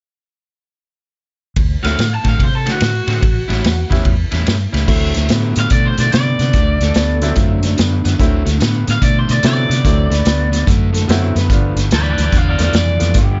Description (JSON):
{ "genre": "electric blues shuffle", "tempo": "145 BPM", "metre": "4/4", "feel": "swing 64% on 8ths", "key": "D mixolydian", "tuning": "A4 = 440 Hz", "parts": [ { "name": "vintage muted fingered electric bass", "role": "bass", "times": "1.6-13.4 s", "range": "G1 to C3", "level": "-19 LUFS", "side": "equal", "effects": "none" }, { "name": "vintage drum kit", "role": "drums", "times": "1.6-13.3 s", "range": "crash cymbal, hi-hat, kick drum, ride cymbal, snare drum", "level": "-19 LUFS", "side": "equal", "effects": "none" }, { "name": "raw garage guitar", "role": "melody", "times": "1.8-13.2 s", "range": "F#4 to A5", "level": "-22 LUFS", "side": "equal", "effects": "overdrive" }, { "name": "bright upright piano", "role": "accompaniment", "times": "1.8-13.1 s", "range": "F3 to E4", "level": "-26 LUFS", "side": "equal", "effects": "none" }, { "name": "electric guitar at the edge of break-up", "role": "riff", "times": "1.8-13.4 s", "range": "G2 to F#4", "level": "-23 LUFS", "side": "equal", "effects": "none" }, { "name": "electric guitar through a small old amp", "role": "second line", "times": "6.8-13.4 s", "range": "B3 to B4", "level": "-30 LUFS", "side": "equal", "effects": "harmonic tremolo, tape echo" } ], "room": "little or no reverb", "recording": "nothing above 7.6 kHz", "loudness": "-15 LUFS", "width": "mono", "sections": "1.6-4.9 A section; 4.9-13.4 B section", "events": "none", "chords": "1.6 D7; 3.2 A7; 4.9 D9; 11.5 G9" }